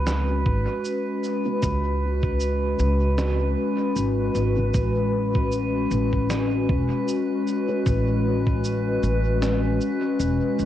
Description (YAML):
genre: ambient dub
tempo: 77 BPM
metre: 4/4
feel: swing 56% on 16ths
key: unclear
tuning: A4 = 440 Hz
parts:
  - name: warbly tape-like pad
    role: sustained chords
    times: 0.0-10.7 s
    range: G#3 to B4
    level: -24 LUFS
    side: left 2 dB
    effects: chorus, built-in reverb
  - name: upright bass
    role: bass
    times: 0.0-10.7 s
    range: E1 to C#2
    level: -24 LUFS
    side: equal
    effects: tube saturation
  - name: drifting glass-harmonics texture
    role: texture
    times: 0.0-10.7 s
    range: B4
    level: -31 LUFS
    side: right 1 dB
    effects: chorus, built-in reverb
  - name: electronic snare drum and cabasa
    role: drums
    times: 0.1-10.7 s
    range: none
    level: -32 LUFS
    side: right 1 dB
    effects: cassette tape, dub echo
  - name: electronic kick drum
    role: drums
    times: 0.5-8.6 s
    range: none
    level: -24 LUFS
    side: equal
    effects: cassette tape
  - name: filtered dub chord stab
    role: stabs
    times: 1.4-7.9 s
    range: C#4 to C#5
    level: -36 LUFS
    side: right 1 dB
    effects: none
room: light reverb, digital ambience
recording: home recording on cassette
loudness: -21 LUFS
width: side -12 dB against mid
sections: 0.0-10.7 A section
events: none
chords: 0.0 C#m7; 4.7 Amaj7